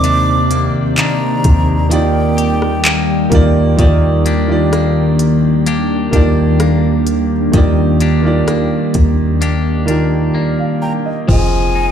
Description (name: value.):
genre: contemporary R&B.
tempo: 64 BPM.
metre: 4/4.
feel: straight.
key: unclear.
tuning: A4 = 440 Hz.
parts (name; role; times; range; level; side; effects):
breathy mellow concert flute; melody; 0.0-3.3, 10.8-11.9 s; G5 to D6; -20 LUFS; equal; ping-pong delay.
warm grand piano; accompaniment; 0.0-11.9 s; C3 to G5; -16 LUFS; right 3 dB; none.
glassy FM pad; sustained chords; 0.0-11.3 s; Eb3 to D5; -18 LUFS; left 2 dB; ensemble chorus, built-in reverb.
clean electric guitar; arpeggios; 0.0-11.9 s; C3 to G4; -21 LUFS; left 5 dB; none.
warm 808-style bass; bass; 0.0-11.9 s; F1 to Eb2; -16 LUFS; equal; none.
smooth R&B drum kit; drums; 0.0-11.5 s; handclaps, hi-hat, kick drum, rim click; -15 LUFS; equal; overdrive.
downlifter; sound effects; 11.3-11.9 s; none; -26 LUFS; left 1 dB; none.
room: little or no reverb.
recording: played on a big sound system in a bare room, large studio reverb.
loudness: -11 LUFS.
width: side -8 dB against mid.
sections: 0.0-3.8 A section; 3.8-11.3 B section.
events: break 10.3-11.3.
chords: 0.0 Cm9; 1.9 Ebmaj7; 11.3 Fm9.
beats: | 0.04 0.97 1.91 2.85 | 3.79 4.72 5.66 6.60 | 7.54 8.47 9.41 10.35 | 11.29.